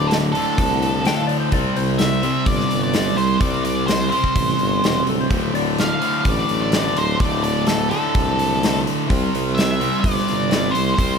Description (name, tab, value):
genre	classic rock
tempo	127 BPM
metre	4/4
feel	straight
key	unclear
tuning	A4 = 440 Hz
part	octave-fuzz lead guitar	melody	0.0-11.2 s	A4 to F5	-23 LUFS	equal	distortion, digital delay
part	cranked stack guitar	riff	0.0-11.2 s	D2 to C4	-24 LUFS	left 14 dB	overdrive
part	sludgy distorted guitar	riff	0.0-11.2 s	D2 to C4	-23 LUFS	right 9 dB	overdrive
part	warm tuba	bass	0.0-11.2 s	D1 to C2	-24 LUFS	equal	none
part	big rock drum kit	drums	0.1-11.1 s	hi-hat, kick drum, snare drum	-23 LUFS	equal	none
part	clean lap steel guitar	second line	1.1-2.0, 4.9-5.8 s	G4 to G5	-29 LUFS	left 6 dB	none
room	light reverb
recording	none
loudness	-17 LUFS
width	side -6 dB against mid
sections	0.0-11.2 A section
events	none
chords	0.0 D5; 1.5 C5; 5.3 D5; 9.1 C